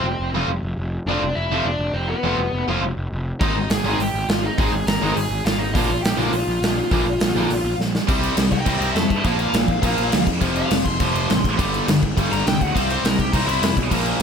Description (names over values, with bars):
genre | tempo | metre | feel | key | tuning
punk rock | 206 BPM | 4/4 | straight | unclear | A4 = 440 Hz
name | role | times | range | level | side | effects
high-gain lead guitar | melody | 0.0-13.8 s | B3 to C6 | -25 LUFS | left 1 dB | distortion
tight distorted guitar | riff | 0.0-14.2 s | F2 to F4 | -22 LUFS | equal | distortion
fuzz picked electric bass | bass | 0.0-14.2 s | F1 to G2 | -25 LUFS | equal | overdrive
big rock drum kit | drums | 3.4-14.2 s | crash cymbal, hi-hat, kick drum, snare drum | -22 LUFS | equal | none
room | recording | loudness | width
light reverb | none | -18 LUFS | side -6 dB against mid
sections
0.0-8.1 A section; 8.1-14.2 B section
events
drum fill 7.8; lead electric guitar solo 8.1-14.2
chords
0.0 F; 3.4 Ab; 5.7 Bb; 8.1 C; 9.2 Bb5; 10.4 F; 11.6 G5; 12.7 C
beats
0.20 0.49 0.78 | 1.07 1.37 1.66 1.95 | 2.24 2.54 2.83 3.12 | 3.41 3.70 4.00 4.29 | 4.58 4.87 5.16 5.46 | 5.75 6.04 6.33 6.62 | 6.91 7.21 7.50 7.79 | 8.08 8.37 8.66 8.96 | 9.25 9.54 9.83 10.12 | 10.41 10.71 11.00 11.29 | 11.58 11.87 12.16 12.46 | 12.75 13.04 13.33 13.62 | 13.91 14.20